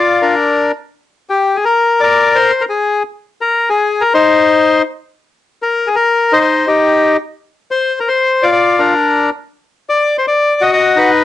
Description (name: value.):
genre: musette.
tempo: 167 BPM.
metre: 3/4.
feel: rubato.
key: unclear.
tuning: A4 = 441 Hz.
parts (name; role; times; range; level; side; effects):
bandoneon; solo; 0.0-11.2 s; D4 to D#5; -10 LUFS; left 3 dB; cassette tape.
room: moderate small room reverb, RT60 0.5 s.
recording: home recording on cassette, nothing above 10.7 kHz.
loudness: -11 LUFS.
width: side -13 dB against mid.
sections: 0.0-11.2 A section.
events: none.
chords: 0.0 Bb; 0.9 N.C.; 8.4 Bb; 9.5 N.C.; 10.6 B.